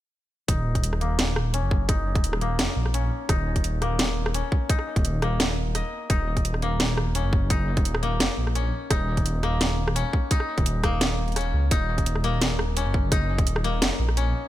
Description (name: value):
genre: half-time drum and bass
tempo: 171 BPM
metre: 4/4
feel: half-time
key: Eb minor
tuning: A4 = 442 Hz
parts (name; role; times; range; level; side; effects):
- koto; arpeggios; 0.5-14.5 s; Bb3 to Eb5; -30 LUFS; left 3 dB; low-pass filter, tape echo
- dark detuned saw bass; bass; 0.5-14.3 s; Eb1 to Db2; -25 LUFS; equal; none
- drum and bass drum kit; drums; 0.5-14.2 s; hi-hat, rim click, snare drum; -27 LUFS; right 1 dB; overdrive
- electronic kick drum; drums; 0.5-13.5 s; none; -23 LUFS; equal; overdrive
room: digital ambience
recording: none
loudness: -22 LUFS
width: side -14 dB against mid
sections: 0.5-14.5 A section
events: filter sweep on koto 0.5-14.5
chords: 0.5 Eb5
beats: | 0.48 0.84 1.19 1.54 | 1.89 2.24 2.59 2.94 | 3.29 3.64 3.99 4.34 | 4.70 5.05 5.40 5.75 | 6.10 6.45 6.80 7.15 | 7.50 7.85 8.21 8.55 | 8.91 9.26 9.61 9.96 | 10.31 10.66 11.01 11.36 | 11.71 12.06 12.41 12.77 | 13.12 13.47 13.82 14.17